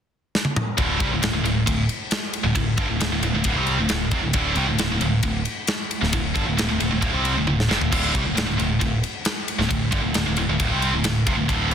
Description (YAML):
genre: heavy metal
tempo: 134 BPM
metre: 4/4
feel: straight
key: D minor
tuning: A4 = 440 Hz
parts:
  - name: tight metal drum kit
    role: drums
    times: 0.3-11.7 s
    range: crash cymbal, kick drum, ride cymbal, snare drum, toms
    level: -24 LUFS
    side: equal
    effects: soft clipping on kick
  - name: heavy high-gain guitar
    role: riff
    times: 0.8-11.7 s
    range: D2 to C4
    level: -22 LUFS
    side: equal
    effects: distortion
  - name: growling picked electric bass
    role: bass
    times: 0.8-11.7 s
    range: D1 to C2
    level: -26 LUFS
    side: equal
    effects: overdrive
room: small room ambience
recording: dense, heavily limited modern master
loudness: -20 LUFS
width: side -8 dB against mid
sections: 0.8-11.7 A section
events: drum fill 0.3-0.8, 7.5-7.9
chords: 0.0 N.C.; 0.8 D5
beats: 0.33 | 0.78 1.22 1.67 2.12 | 2.56 3.01 3.46 3.90 | 4.35 4.79 5.24 5.69 | 6.13 6.58 7.03 7.47 | 7.92 8.37 8.81 9.26 | 9.70 10.15 10.60 11.04 | 11.49